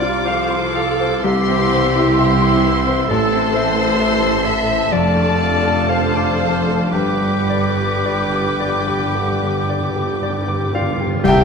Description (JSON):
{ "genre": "classical, romantic movement for piano and orchestra", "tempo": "54-67 BPM", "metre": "4/4", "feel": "rubato", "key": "unclear", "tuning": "A4 = 439 Hz", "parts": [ { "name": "clear concert grand piano", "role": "melody", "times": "0.0-11.4 s", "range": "A1 to E6", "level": "-20 LUFS", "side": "left 2 dB", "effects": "none" }, { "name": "warm studio violin section", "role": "melody", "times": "0.0-11.4 s", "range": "C5 to D6", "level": "-26 LUFS", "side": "left 4 dB", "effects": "none" }, { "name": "clear clarinet", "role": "second line", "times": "0.0-11.4 s", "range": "G4 to E5", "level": "-24 LUFS", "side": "left 2 dB", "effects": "none" }, { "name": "flute section", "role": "second line", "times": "0.0-11.4 s", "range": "F4 to D6", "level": "-26 LUFS", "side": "left 2 dB", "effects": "none" }, { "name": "mellow cor anglais", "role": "second line", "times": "0.0-11.4 s", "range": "E5 to G5", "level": "-27 LUFS", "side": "right 5 dB", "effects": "none" }, { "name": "rich studio violin section", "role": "second line", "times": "0.0-11.4 s", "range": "E4 to E5", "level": "-27 LUFS", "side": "left 1 dB", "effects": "none" }, { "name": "warm studio viola section", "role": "accompaniment", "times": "0.0-11.4 s", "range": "D3 to A4", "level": "-27 LUFS", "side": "right 2 dB", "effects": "none" }, { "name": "mellow French horn section", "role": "sustained chords", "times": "0.0-11.4 s", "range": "F3 to F4", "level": "-26 LUFS", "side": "left 3 dB", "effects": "none" }, { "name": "mellow tuba", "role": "bass", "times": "0.0-11.4 s", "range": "F1 to C2", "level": "-26 LUFS", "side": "right 4 dB", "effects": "none" }, { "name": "rich studio double bass section", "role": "bass", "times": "0.0-11.4 s", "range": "F1 to C2", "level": "-27 LUFS", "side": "right 4 dB", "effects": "none" }, { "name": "warm studio cello section", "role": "bass", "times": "0.0-11.4 s", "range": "F2 to C3", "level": "-27 LUFS", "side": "right 4 dB", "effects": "none" }, { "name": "cymbal swell, clash cymbals and concert bass drum", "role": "percussion", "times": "6.9-11.4 s", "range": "none", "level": "-33 LUFS", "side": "equal", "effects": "none" }, { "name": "timpani", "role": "percussion", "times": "6.9-11.2 s", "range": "G2", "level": "-27 LUFS", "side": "right 1 dB", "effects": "none" } ], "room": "wet recital hall reverb, RT60 1.3 s", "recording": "none", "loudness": "-15 LUFS", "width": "side -5 dB against mid", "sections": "0.0-11.3 A section", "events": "timpani fill 6.9-11.3; band accent 11.3", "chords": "0.0 F/C; 1.2 C; 3.1 Am; 4.9 Dm/F; 6.9 G", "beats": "0.27 1.24 2.17 | 3.10 4.01 4.93 5.88 | 6.93 8.04 9.13 10.20 | 11.25" }